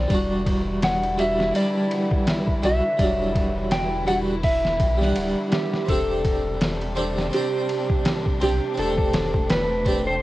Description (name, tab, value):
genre	trip hop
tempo	83 BPM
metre	4/4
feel	swing 57% on 16ths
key	E minor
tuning	A4 = 440 Hz
part	electric slide guitar	melody	0.0-10.2 s	G4 to G5	-25 LUFS	equal	cassette tape, tape echo
part	harpsichord	accompaniment	0.0-10.1 s	F#3 to F#5	-25 LUFS	right 1 dB	tremolo, low-pass filter, cassette tape
part	warm sub bass	bass	0.0-10.2 s	D1 to B1	-28 LUFS	equal	none
part	rich symphonic string section	sustained chords	0.1-10.2 s	C3 to E4	-32 LUFS	left 1 dB	cassette tape
part	trip hop sampler-style drum kit	drums	0.1-10.1 s	hi-hat, kick drum, ride cymbal, snare drum	-25 LUFS	equal	overdrive, studio reverb
room	light reverb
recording	home recording on cassette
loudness	-20 LUFS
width	side -16 dB against mid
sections	0.0-10.2 A section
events	filter sweep on harpsichord 0.0-10.2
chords	0.1 Em7; 5.9 Csus2/E